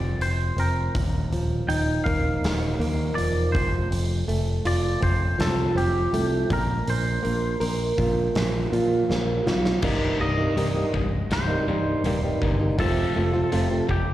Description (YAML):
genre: quiet-loud alternative rock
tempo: 81 BPM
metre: 4/4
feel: straight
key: C dorian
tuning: A4 = 441 Hz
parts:
  - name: twangy electric guitar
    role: melody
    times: 0.0-14.1 s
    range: G4 to G5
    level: -30 LUFS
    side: equal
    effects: wide subtle chorus, slapback echo
  - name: fingerpicked plugged-in old ladder-braced acoustic guitar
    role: arpeggios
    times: 0.0-14.1 s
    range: C2 to Bb4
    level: -26 LUFS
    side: right 2 dB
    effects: slapback echo
  - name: picked electric bass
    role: bass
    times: 0.0-14.1 s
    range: C1 to Bb2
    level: -25 LUFS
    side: equal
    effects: none
  - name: big rock drum kit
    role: drums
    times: 0.2-14.1 s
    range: crash cymbal, hi-hat, kick drum, snare drum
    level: -30 LUFS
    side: equal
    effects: none
  - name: scooped high-gain guitar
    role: riff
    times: 9.8-14.1 s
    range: C2 to F3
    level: -31 LUFS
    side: left 7 dB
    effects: distortion, slapback echo
room: light reverb, small room ambience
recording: live gig heard through the venue's PA, recital hall reverb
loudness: -21 LUFS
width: side -14 dB against mid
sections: 0.0-9.8 A section; 9.8-14.1 B section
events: drum fill 9.1-9.8; clean electric guitar solo 9.8-14.1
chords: 0.0 F; 0.9 Ebsus2; 3.5 Fadd9; 6.5 Bbsus2; 9.8 Cm7; 12.8 F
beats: 0.21 | 0.95 1.69 2.43 3.17 | 3.91 4.65 5.39 6.13 | 6.87 7.61 8.35 9.09 | 9.83 10.57 11.31 12.04 | 12.78 13.52